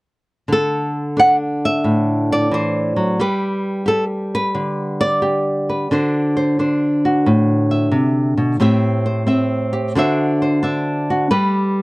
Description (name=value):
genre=solo jazz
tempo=89 BPM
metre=4/4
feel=swing 68% on 8ths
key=D mixolydian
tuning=A4 = 439 Hz
part: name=flamenco guitar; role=solo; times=0.5-11.8 s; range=A2 to F#5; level=-15 LUFS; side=equal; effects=none
room=light reverb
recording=none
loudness=-15 LUFS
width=side -22 dB against mid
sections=0.5-11.8 A section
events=none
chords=0.5 D9; 3.2 G; 5.9 D9; 8.6 Am7; 9.9 D9; 11.3 G